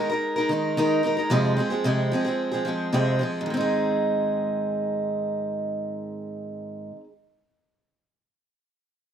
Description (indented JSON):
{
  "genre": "pop",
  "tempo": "111 BPM",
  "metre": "4/4",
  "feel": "straight",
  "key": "Ab major",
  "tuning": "A4 = 440 Hz",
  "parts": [
    { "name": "picked acoustic archtop guitar", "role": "accompaniment", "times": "0.0-7.1 s", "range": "F2 to Bb4", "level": "-23 LUFS", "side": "right 1 dB", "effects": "none" }
  ],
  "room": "light reverb, small room reverb",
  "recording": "none",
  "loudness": "-22 LUFS",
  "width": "side -8 dB against mid",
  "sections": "0.0-3.5 A section; 3.5-7.8 B section",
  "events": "none",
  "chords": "0.0 Ebsus4; 1.3 Fm; 3.5 Ab"
}